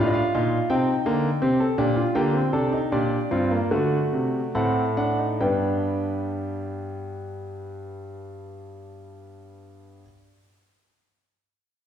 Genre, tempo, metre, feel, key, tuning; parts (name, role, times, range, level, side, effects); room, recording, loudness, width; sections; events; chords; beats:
classical, baroque-style 4-part fugue for grand piano; 68-86 BPM; 4/4; straight; A4 = 439 Hz
warm concert grand piano; solo; 0.0-10.0 s; G2 to G5; -22 LUFS; equal
wet recital hall reverb, RT60 1.4 s; heard from further back in the room; -21 LUFS; side -9 dB against mid
0.0-5.4 A section; 5.4-8.9 B section
slowing down 0.0-5.4
0.0 Bb; 0.7 Cm; 2.1 Gm; 3.7 D7; 5.4 G
0.69 1.41 | 2.15 2.92 3.71 4.54 | 5.41 6.29 7.17 8.05